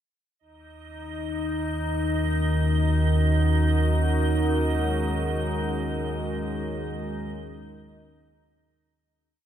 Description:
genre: dark ambient drone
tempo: 55 BPM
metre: 4/4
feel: straight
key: Eb minor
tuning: A4 = 440 Hz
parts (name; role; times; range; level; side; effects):
- dark analog pad; sustained chords; 0.4-9.1 s; Eb3 to Bb4; -32 LUFS; equal; chorus
- deep rumbling drone; drone; 1.3-9.2 s; Eb2 to Eb3; -24 LUFS; equal; built-in reverb
- icy glass pad; texture; 0.4-9.1 s; Eb4 to Eb5; -30 LUFS; left 1 dB; chorus, built-in reverb
room: moderate huge ambient reverb, RT60 8.4 s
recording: none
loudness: -23 LUFS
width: side -10 dB against mid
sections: 0.4-9.1 A section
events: fade-in on analog synth pad 0.4-9.1; fade-out 4.7-9.1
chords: 0.4 Ebm; 4.7 Absus4

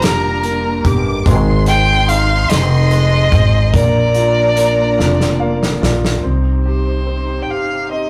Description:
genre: six-eight pop ballad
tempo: 48 BPM (dotted quarters)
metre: 6/8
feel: straight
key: unclear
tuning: A4 = 441 Hz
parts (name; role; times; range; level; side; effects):
- warm violin; melody; 0.0-8.1 s; Bb4 to G5; -20 LUFS; equal; none
- warm studio violin section; second line; 0.0-5.8 s; Bb5 to D6; -27 LUFS; equal; none
- bright upright piano; accompaniment; 0.0-8.1 s; Ab3 to F5; -24 LUFS; equal; none
- warm chamber string section; sustained chords; 0.0-8.1 s; C3 to G4; -28 LUFS; equal; none
- upright bass; bass; 0.0-8.1 s; F1 to C2; -18 LUFS; equal; none
- loose indie drum kit; drums; 0.0-6.2 s; hi-hat, kick drum, snare drum; -20 LUFS; equal; none
room: moderate studio reverb, RT60 0.6 s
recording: rough rehearsal-room recording, warm saturation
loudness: -14 LUFS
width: mono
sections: 0.0-6.2 A section; 6.2-8.1 B section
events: drum fill 5.0-6.2; upright piano fill 5.0-6.2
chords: 0.0 Bb6; 1.3 Ab; 3.7 Bb; 6.2 Cm

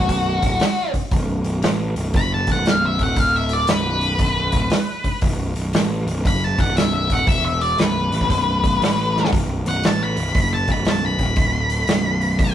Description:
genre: blues rock power trio and southern rock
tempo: 117 BPM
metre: 4/4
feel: swing 66% on 8ths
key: B minor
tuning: A4 = 439 Hz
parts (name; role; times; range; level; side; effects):
- octave-fuzz lead guitar; melody; 0.0-12.5 s; F#4 to B5; -21 LUFS; left 2 dB; distortion
- fuzz picked electric bass; bass; 0.0-12.5 s; B0 to A1; -22 LUFS; equal; overdrive
- vintage drum kit; drums; 0.0-12.5 s; hi-hat, kick drum, snare drum; -21 LUFS; equal; none
room: moderate stone room reverb, RT60 1.4 s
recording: rough rehearsal-room recording, tube saturation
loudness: -17 LUFS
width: side -10 dB against mid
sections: 0.0-12.5 A section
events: lead electric guitar solo 0.0-12.5; drum fill 9.1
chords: 0.0 Bm

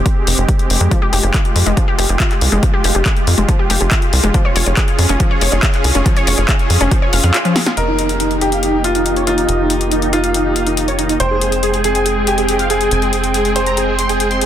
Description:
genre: uplifting trance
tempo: 140 BPM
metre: 4/4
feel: straight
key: F minor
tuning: A4 = 440 Hz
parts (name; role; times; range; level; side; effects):
- supersaw pad; sustained chords; 0.0-14.5 s; Ab3 to G5; -21 LUFS; right 2 dB; sidechain pumping, low-pass filter
- tight sequencer bass; bass; 0.0-14.5 s; F1 to F2; -18 LUFS; equal; sidechain pumping
- electronic kick drum; drums; 0.1-7.0 s; none; -15 LUFS; equal; overdrive
- punchy analog drum machine; drums; 0.1-14.5 s; handclaps, hi-hat, snare drum; -20 LUFS; left 3 dB; overdrive
- wide unison pluck; arpeggios; 0.9-7.7 s; F3 to F5; -21 LUFS; left 3 dB; sidechain pumping, ping-pong delay
- dense compressed supersaw; melody; 7.8-14.5 s; Eb4 to C6; -18 LUFS; right 1 dB; sidechain pumping, low-pass filter, ping-pong delay
- bright grand piano; second line; 7.8-14.5 s; F4 to C5; -18 LUFS; equal; tape echo
room: light reverb, digital ambience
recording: dense, heavily limited modern master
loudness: -12 LUFS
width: side -11 dB against mid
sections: 0.0-7.8 A section; 7.8-14.5 B section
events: filter sweep on supersaw synth 0.0-7.8, 7.8-14.5; drum fill 7.6; band accent 7.7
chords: 0.0 Fmadd9; 4.3 Db/F; 7.8 Eb/F; 11.2 Fmadd9

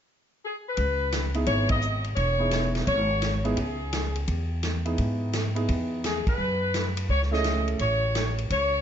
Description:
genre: jazz, big band swing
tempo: 171 BPM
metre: 4/4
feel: swing 65% on 8ths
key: C# minor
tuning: A4 = 442 Hz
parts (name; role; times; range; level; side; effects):
- mellow saxophone section; melody; 0.5-8.8 s; G4 to D#5; -27 LUFS; left 1 dB; none
- upright bass; bass; 0.8-8.8 s; E1 to G#2; -28 LUFS; equal; none
- swinging big-band drum kit; drums; 0.8-8.6 s; hi-hat, kick drum, ride cymbal, snare drum; -31 LUFS; equal; none
- clear upright piano; accompaniment; 1.3-7.8 s; A3 to G#4; -31 LUFS; right 2 dB; none
room: light reverb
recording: nothing above 7.7 kHz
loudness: -24 LUFS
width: side -9 dB against mid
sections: 0.8-8.8 A section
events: band accent 1.6, 6.2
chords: 0.0 N.C.; 0.8 C#m7; 6.4 F#m7

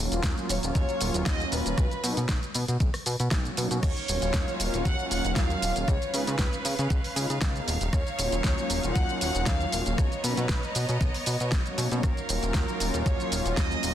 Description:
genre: nu-disco, nu disco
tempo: 117 BPM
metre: 4/4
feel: swing 53% on 16ths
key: Eb minor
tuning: A4 = 439 Hz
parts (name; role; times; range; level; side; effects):
- warm analog pad; accompaniment; 0.0-13.9 s; Gb3 to Bb4; -32 LUFS; equal; chorus, sidechain pumping, slapback echo
- chorused synth bass; bass; 0.0-13.9 s; Eb1 to Db3; -30 LUFS; equal; tube saturation
- pop drum kit; drums; 0.1-13.9 s; crash cymbal, hi-hat, rim click, shaker, snare drum; -32 LUFS; equal; studio reverb
- electronic kick drum; drums; 0.2-13.7 s; none; -28 LUFS; equal; studio reverb
- warm chamber violin section; melody; 0.5-13.9 s; Bb4 to Gb5; -33 LUFS; right 1 dB; vintage 12-bit sampler grit, tape echo
- clear studio string section; sustained chords; 3.8-13.9 s; B3 to A#5; -36 LUFS; right 1 dB; sidechain pumping
room: light reverb, digital ambience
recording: dense, heavily limited modern master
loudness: -24 LUFS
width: side -11 dB against mid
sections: 0.0-13.9 A section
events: none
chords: 0.0 Ebm9; 1.8 Bmaj7sus2; 3.8 Ebm9; 5.9 Db7; 7.7 Ebm9; 10.0 Bmaj9; 12.0 Ebm9

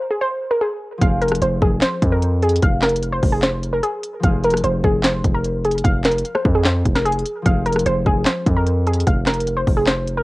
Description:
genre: hip hop, trap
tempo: 149 BPM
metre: 4/4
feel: half-time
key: F minor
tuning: A4 = 443 Hz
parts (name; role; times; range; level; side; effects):
- warbly dusty pluck; melody; 0.0-10.2 s; Ab4 to F5; -20 LUFS; equal; chorus, cassette tape, plate reverb, analog delay
- concert harp; accompaniment; 1.0-10.2 s; F3 to Ab4; -28 LUFS; left 2 dB; cassette tape, plate reverb
- distorted 808-style bass; bass; 1.0-10.2 s; F1 to F2; -20 LUFS; equal; distortion
- trap drum kit; drums; 1.0-10.2 s; handclaps, hi-hat, kick drum, rim click, snare drum; -19 LUFS; equal; cassette tape
room: light reverb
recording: home recording on cassette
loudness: -16 LUFS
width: side -20 dB against mid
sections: 0.0-10.2 A section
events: break 0.0-1.0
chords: 0.0 Fm

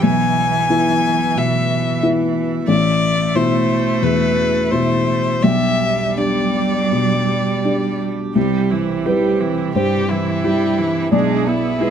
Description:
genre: neoclassical piano and strings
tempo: 81-92 BPM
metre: 4/4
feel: rubato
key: C major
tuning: A4 = 440 Hz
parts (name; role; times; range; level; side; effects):
- rich violin; melody; 0.0-11.9 s; D4 to G#5; -20 LUFS; left 3 dB; none
- clear cello; second line; 0.0-11.9 s; E3 to B3; -22 LUFS; right 9 dB; none
- felt-muted upright piano; accompaniment; 0.0-11.9 s; A1 to E5; -18 LUFS; left 2 dB; none
- pedal harmonium; sustained chords; 0.0-11.9 s; C4 to E5; -30 LUFS; right 6 dB; none
- rich viola; accompaniment; 8.4-11.9 s; E4 to G#4; -24 LUFS; right 5 dB; none
room: light reverb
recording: close, detailed microphones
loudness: -15 LUFS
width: side -8 dB against mid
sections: 0.0-8.4 A section; 8.4-11.9 A section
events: none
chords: 0.0 E/B; 2.7 Amadd9; 5.4 G/B; 8.4 C; 11.1 E/B

